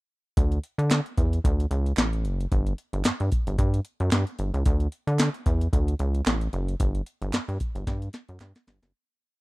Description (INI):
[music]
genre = early-eighties boogie funk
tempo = 112 BPM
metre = 4/4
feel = swing 56% on 16ths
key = D major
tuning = A4 = 440 Hz
[part]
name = rubbery square bass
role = bass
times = 0.4-8.9 s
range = F#1 to D3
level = -25 LUFS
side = equal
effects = none
[part]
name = booming analog drum machine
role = drums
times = 0.4-8.9 s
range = handclaps, hi-hat, kick drum, snare drum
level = -25 LUFS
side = equal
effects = none
[part]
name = group handclap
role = percussion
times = 0.9-8.5 s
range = none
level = -37 LUFS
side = right 8 dB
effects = none
[sound]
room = little or no reverb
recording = dry, close 1970s-style studio recording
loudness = -23 LUFS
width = side -21 dB against mid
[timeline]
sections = 0.4-8.9 breakdown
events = fade-out 6.8-8.9; drum fill 7.9-8.9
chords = none